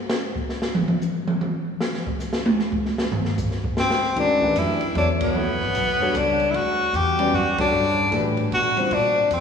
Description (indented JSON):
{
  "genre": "modal jazz",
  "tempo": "152 BPM",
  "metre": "3/4",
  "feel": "swing 64% on 8ths",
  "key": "G lydian from 4.2 s",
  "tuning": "A4 = 439 Hz",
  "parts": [
    { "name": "open jazz drum kit", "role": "drums", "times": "0.1-9.4 s", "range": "hi-hat, kick drum, ride cymbal, snare drum, toms", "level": "-25 LUFS", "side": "right 1 dB", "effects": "none" },
    { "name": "bright tenor saxophone", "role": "melody", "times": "3.8-9.4 s", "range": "B3 to G4", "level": "-20 LUFS", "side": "left 2 dB", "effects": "none" },
    { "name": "warm concert grand piano", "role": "accompaniment", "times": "4.2-8.9 s", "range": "D3 to D5", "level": "-25 LUFS", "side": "left 2 dB", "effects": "none" },
    { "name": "upright bass", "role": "bass", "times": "4.2-9.4 s", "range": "G1 to B2", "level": "-27 LUFS", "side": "left 1 dB", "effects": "none" }
  ],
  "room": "wet church reverb, RT60 2.5 s",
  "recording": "recorded in a church or concert hall, small room ambience",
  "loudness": "-19 LUFS",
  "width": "side -6 dB against mid",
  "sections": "0.0-4.2 A section; 4.2-9.4 B section",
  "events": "drum solo 0.0-4.2; band accent 5.2, 7.5",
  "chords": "0.0 N.C.; 4.2 Gmaj9",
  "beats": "0.22 | 0.62 1.01 1.41 | 1.80 2.19 2.59 | 2.98 3.38 3.77 | 4.17 4.57 4.96 | 5.36 5.75 6.15 | 6.54 6.94 7.33 | 7.73 8.12 8.52 | 8.91 9.31"
}